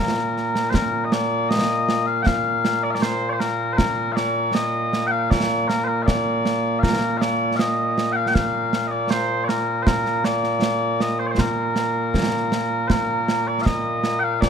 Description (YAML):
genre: scottish traditional, Scottish pipe music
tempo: 79 BPM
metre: 2/4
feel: straight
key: Bb major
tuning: A4 = 435 Hz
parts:
  - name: mellow small bagpipes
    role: melody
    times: 0.0-14.5 s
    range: Bb2 to G5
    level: -20 LUFS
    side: left 1 dB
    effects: slapback echo
  - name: concert snare drum and concert bass drum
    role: drums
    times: 0.2-14.5 s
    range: none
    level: -23 LUFS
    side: right 2 dB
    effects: none
room: light reverb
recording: close, detailed microphones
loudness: -19 LUFS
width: side -7 dB against mid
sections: 0.7-12.9 A section; 12.9-14.5 B section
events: none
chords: none